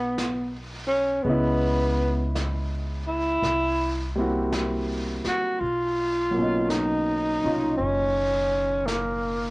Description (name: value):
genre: jazz ballad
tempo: 55 BPM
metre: 4/4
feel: swing 68% on 8ths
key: unclear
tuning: A4 = 439 Hz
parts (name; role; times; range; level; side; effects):
- breathy tenor saxophone; melody; 0.0-9.5 s; A#3 to F#4; -24 LUFS; equal; cassette tape
- clear concert grand piano; accompaniment; 0.0-9.5 s; Cb3 to Eb5; -28 LUFS; equal; cassette tape
- upright bass; bass; 0.0-9.5 s; F#1 to Db2; -30 LUFS; equal; none
- jazz brush drum kit; drums; 0.2-9.5 s; brushed snare drum, hi-hat, snare drum; -36 LUFS; equal; cassette tape
room: light reverb, small room ambience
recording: home recording on cassette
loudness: -22 LUFS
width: side -24 dB against mid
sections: 0.0-9.5 A section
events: none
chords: 0.0 Abm9; 1.3 Dbm7; 3.4 C7#11; 5.6 Bmaj9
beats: 0.17 | 1.25 2.34 3.43 4.52 | 5.61 6.70 7.79 8.88